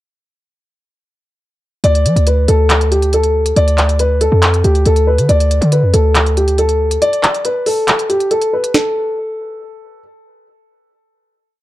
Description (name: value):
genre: hip hop, trap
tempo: 139 BPM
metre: 4/4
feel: half-time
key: D dorian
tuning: A4 = 440 Hz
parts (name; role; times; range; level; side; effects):
- dark baby grand piano; melody; 1.8-10.0 s; G4 to D5; -15 LUFS; left 1 dB; ping-pong delay
- hard-hitting 808-style bass; bass; 1.8-7.0 s; D2 to F3; -13 LUFS; equal; none
- trap drum kit; drums; 1.8-8.8 s; handclaps, hi-hat, snare drum; -17 LUFS; equal; none
room: light reverb, digital ambience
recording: dark, warm production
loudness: -11 LUFS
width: side -16 dB against mid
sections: 1.8-8.7 hook; 8.7-11.6 final note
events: break 7.0-8.7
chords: 1.8 D5; 8.7 N.C.